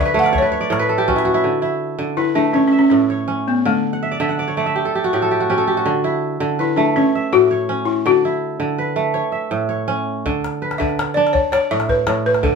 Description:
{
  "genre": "west african traditional, West African string and xylophone music",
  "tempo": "109 BPM (dotted quarters)",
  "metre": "12/8",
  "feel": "straight",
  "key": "D major",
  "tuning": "A4 = 440 Hz",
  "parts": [
    { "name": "balafon", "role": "melody", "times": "0.0-12.6 s", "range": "A3 to F#5", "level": "-16 LUFS", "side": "left 2 dB", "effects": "none" },
    { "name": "kora", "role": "arpeggios", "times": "0.0-12.6 s", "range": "A2 to F#5", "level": "-18 LUFS", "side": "right 2 dB", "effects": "none" },
    { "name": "calabash", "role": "percussion", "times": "0.3-1.4, 10.3-12.5 s", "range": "none", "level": "-25 LUFS", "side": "left 3 dB", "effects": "none" }
  ],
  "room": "moderate studio ambience, RT60 0.5 s",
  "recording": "band playing live in one room",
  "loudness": "-16 LUFS",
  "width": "side -5 dB against mid",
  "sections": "0.0-1.4 A section; 1.4-10.2 B section; 10.2-12.6 C section",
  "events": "kora fill 0.0-1.4, 3.9-5.9; balafon solo 0.0-1.4",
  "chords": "0.3 A; 1.4 D5; 2.6 A; 3.7 D5; 4.8 A; 5.9 D5; 7.0 A; 8.1 D; 9.1 A; 10.2 Bmadd11/D; 11.3 Aadd11",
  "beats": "0.35 0.90 | 1.45 2.00 2.55 3.10 | 3.65 4.21 4.76 5.31 | 5.86 6.41 6.96 7.50 | 8.05 8.60 9.15 9.70 | 10.24 10.79 11.34 11.88 | 12.43"
}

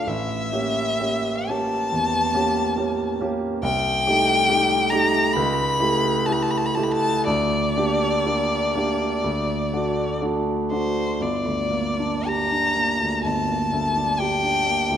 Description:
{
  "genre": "classical, romantic duo for violin and grand piano",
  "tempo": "55-71 BPM",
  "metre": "4/4",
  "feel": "rubato",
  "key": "G minor from 3.6 s",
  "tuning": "A4 = 438 Hz",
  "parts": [
    { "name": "rich violin", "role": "melody", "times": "0.0-15.0 s", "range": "C5 to B5", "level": "-22 LUFS", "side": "left 2 dB", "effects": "none" },
    { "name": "warm concert grand piano", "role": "accompaniment", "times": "0.0-15.0 s", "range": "G1 to G4", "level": "-23 LUFS", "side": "right 2 dB", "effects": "none" }
  ],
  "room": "wet scoring stage reverb, RT60 1.9 s",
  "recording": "none",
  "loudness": "-20 LUFS",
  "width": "side -9 dB against mid",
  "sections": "0.0-11.2 A section; 11.2-15.0 B section",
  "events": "none",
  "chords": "0.1 A7b9; 3.6 Am7b5/C; 5.3 A7/C#; 7.3 Gm/D; 9.2 D; 11.2 Gm",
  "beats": "| 0.07 0.98 1.91 2.76 | 3.62 4.48 5.34 6.25 | 7.25 8.25 9.23 10.21 | 11.19 12.25 13.22 14.18"
}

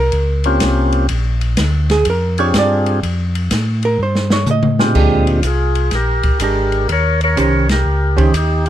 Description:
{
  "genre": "soul jazz organ trio",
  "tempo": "124 BPM",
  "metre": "4/4",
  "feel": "swing 66% on 8ths",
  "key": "Bb mixolydian",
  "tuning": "A4 = 444 Hz",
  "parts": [
    { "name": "archtop guitar, miked and amplified", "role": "accompaniment", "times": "0.0-8.3 s", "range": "Eb3 to Eb5", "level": "-18 LUFS", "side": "right 4 dB", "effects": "none" },
    { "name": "mellow tonewheel organ", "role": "bass", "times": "0.0-8.7 s", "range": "Ab1 to A2", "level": "-16 LUFS", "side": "equal", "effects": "overdrive, chorus vibrato, slow rotary speaker" },
    { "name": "open jazz drum kit", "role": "drums", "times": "0.1-8.7 s", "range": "crash cymbal, hi-hat, kick drum, ride cymbal, snare drum, toms", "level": "-20 LUFS", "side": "left 1 dB", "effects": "none" },
    { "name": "percussive tonewheel organ", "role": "melody", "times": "0.5-8.7 s", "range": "Bb2 to Db5", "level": "-17 LUFS", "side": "left 1 dB", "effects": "slow rotary speaker, plate reverb" }
  ],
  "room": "light reverb",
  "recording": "dark, warm production",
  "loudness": "-13 LUFS",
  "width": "side -11 dB against mid",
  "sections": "0.0-5.0 A section; 5.0-8.7 B section",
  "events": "hollow-body jazz guitar solo 0.0-5.0; drum fill 4.0-5.0; band accent 7.6",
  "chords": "0.0 Eb13 (rootless); 1.1 Bb13; 3.0 F69; 5.0 Bb13; 6.9 Eb6",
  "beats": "0.13 0.61 | 1.09 1.58 2.06 2.54 | 3.03 3.51 3.99 4.47 | 4.96 5.44 5.92 6.41 | 6.89 7.38 7.86 8.34"
}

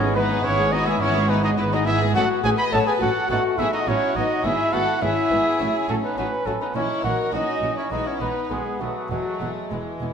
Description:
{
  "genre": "quick classical-period movement for symphony orchestra",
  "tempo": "104 BPM",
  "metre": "4/4",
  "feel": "straight",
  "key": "E major",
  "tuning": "A4 = 440 Hz",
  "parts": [
    { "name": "hollow concert flute", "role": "second line", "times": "0.0-10.1 s", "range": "E4 to B5", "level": "-30 LUFS", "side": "left 1 dB", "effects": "none" },
    { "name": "mellow cor anglais", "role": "second line", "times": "0.0-10.1 s", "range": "E3 to B4", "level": "-31 LUFS", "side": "equal", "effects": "none" },
    { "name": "warm studio violin section", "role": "second line", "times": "0.0-10.1 s", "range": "G#3 to G#4", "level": "-33 LUFS", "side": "left 4 dB", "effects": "none" },
    { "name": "warm bassoon", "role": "accompaniment", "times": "0.0-10.1 s", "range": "G#3 to F#4", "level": "-31 LUFS", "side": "right 1 dB", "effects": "none" },
    { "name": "warm studio viola section", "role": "accompaniment", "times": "0.0-10.1 s", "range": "D#3 to B3", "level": "-32 LUFS", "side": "equal", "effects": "none" },
    { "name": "mellow French horn section", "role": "sustained chords", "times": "0.0-10.1 s", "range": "E3 to B4", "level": "-29 LUFS", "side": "left 5 dB", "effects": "none" },
    { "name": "warm studio cello section", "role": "bass", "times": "0.0-10.1 s", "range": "E2 to B2", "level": "-30 LUFS", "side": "right 2 dB", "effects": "none" },
    { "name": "warm studio double bass section", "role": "bass", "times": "0.0-10.1 s", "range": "E1 to B1", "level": "-30 LUFS", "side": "right 3 dB", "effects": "none" },
    { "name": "warm studio violin section", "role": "melody", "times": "0.2-10.1 s", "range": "G#3 to D#5", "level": "-29 LUFS", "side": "left 4 dB", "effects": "none" },
    { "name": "warm trumpet", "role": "stabs", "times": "0.2-10.1 s", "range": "E4 to B5", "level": "-26 LUFS", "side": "right 2 dB", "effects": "none" }
  ],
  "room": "wet scoring stage reverb, RT60 2.0 s",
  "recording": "none",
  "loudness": "-20 LUFS",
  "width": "side -7 dB against mid",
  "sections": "0.0-10.1 A section",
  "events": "none",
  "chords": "0.0 E/G#; 2.2 F#m/A; 3.3 B7/A; 4.4 E/G#; 5.6 F#m/A; 6.8 F#7/A#; 7.9 E/B; 8.5 B7; 9.1 E",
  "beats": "0.44 1.01 1.58 | 2.15 2.73 3.30 3.87 | 4.45 5.02 5.60 6.18 | 6.75 7.33 7.91 8.51 | 9.11 9.72"
}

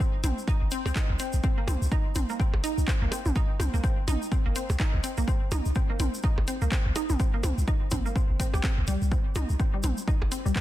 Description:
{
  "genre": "minimal techno",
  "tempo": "125 BPM",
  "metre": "4/4",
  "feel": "swing 59% on 16ths",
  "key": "C minor",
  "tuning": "A4 = 441 Hz",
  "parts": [
    { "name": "resonant blip pluck", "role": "riff", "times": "0.0-10.6 s", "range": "G3 to G4", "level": "-33 LUFS", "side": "equal", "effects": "lush chorus, cassette tape, sidechain pumping, dub echo" },
    { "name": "electronic kick drum", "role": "drums", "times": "0.0-10.6 s", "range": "none", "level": "-26 LUFS", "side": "equal", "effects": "none" },
    { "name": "egg shaker", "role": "percussion", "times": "0.0-10.6 s", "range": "none", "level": "-41 LUFS", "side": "left 1 dB", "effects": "none" },
    { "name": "punchy sub bass", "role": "bass", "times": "0.2-10.5 s", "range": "G1 to C2", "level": "-26 LUFS", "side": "equal", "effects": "sidechain pumping" },
    { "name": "punchy analog drum machine", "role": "drums", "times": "0.2-10.6 s", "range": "handclaps, hi-hat", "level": "-36 LUFS", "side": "left 1 dB", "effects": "none" },
    { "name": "electronic toms and percussion blips", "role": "percussion", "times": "0.2-10.3 s", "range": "none", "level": "-36 LUFS", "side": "right 2 dB", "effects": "tape echo" }
  ],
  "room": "little or no reverb",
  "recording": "dense, heavily limited modern master",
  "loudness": "-24 LUFS",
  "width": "side -14 dB against mid",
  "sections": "0.0-10.6 A section",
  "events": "none",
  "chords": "0.0 C5",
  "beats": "0.00 0.48 0.96 | 1.44 1.92 2.40 2.88 | 3.36 3.84 4.32 4.80 | 5.28 5.76 6.24 6.72 | 7.20 7.68 8.16 8.64 | 9.12 9.60 10.08 10.56"
}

